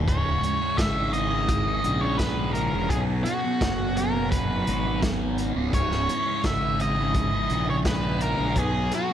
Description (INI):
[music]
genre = psychedelic rock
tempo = 85 BPM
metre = 4/4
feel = straight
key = C# dorian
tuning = A4 = 440 Hz
[part]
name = rich studio string section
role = sustained chords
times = 0.0-9.1 s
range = E3 to G#4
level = -36 LUFS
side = right 7 dB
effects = none
[part]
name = thick fuzz guitar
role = riff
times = 0.0-9.1 s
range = C#2 to B3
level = -28 LUFS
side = equal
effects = distortion, phaser
[part]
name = fuzz fingered electric bass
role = bass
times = 0.0-8.9 s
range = C#1 to B1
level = -28 LUFS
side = equal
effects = overdrive
[part]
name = octave-fuzz lead guitar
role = melody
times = 0.1-9.1 s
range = F#4 to E5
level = -28 LUFS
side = equal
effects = distortion, analog delay
[part]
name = crunchy breakbeat drum kit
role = drums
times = 0.1-9.1 s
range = hi-hat, kick drum, snare drum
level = -28 LUFS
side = equal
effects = none
[sound]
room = light reverb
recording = none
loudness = -22 LUFS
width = side -10 dB against mid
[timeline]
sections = 0.1-9.1 A section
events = none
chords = 0.1 C#m; 2.9 Bsus2; 5.7 C#m; 8.6 Bsus2